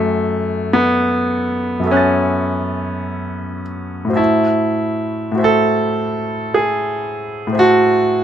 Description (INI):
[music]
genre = classical, impressionist solo piano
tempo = 45-58 BPM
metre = 4/4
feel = rubato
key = unclear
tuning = A4 = 438 Hz
[part]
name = clear concert grand piano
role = solo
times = 0.0-8.2 s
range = F#2 to A6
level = -15 LUFS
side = equal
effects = none
[sound]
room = light reverb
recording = close, detailed microphones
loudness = -15 LUFS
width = side -10 dB against mid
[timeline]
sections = 0.0-8.2 A section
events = none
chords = 0.0 F#m9; 4.2 Am6